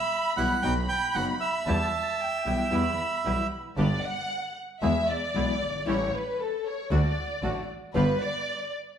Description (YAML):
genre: tango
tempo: 115 BPM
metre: 4/4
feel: rubato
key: E minor, G major from 3.8 s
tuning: A4 = 440 Hz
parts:
  - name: bandoneon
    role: melody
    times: 0.0-3.5 s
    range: E5 to G5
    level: -28 LUFS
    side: right 4 dB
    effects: none
  - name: warm studio violin section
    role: second line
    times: 0.0-8.7 s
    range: A4 to B5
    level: -30 LUFS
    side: left 1 dB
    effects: none
  - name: flamenco guitar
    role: accompaniment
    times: 0.4-8.0 s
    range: B2 to G4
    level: -31 LUFS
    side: left 3 dB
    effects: none
  - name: bandoneon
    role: stabs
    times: 0.4-8.2 s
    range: A3 to G#4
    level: -39 LUFS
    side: right 2 dB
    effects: none
  - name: clear double bass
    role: bass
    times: 0.4-8.2 s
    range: F#1 to E2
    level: -29 LUFS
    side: right 1 dB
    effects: none
room: wet stone room reverb, RT60 1.4 s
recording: band playing live in one room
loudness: -25 LUFS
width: side -8 dB against mid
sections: 0.0-3.8 A section; 3.8-9.0 B section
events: violin section solo 3.8-9.0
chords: 0.0 Em; 0.6 B; 1.7 Em; 3.8 G; 4.8 E; 5.9 A7; 6.9 D; 8.0 G7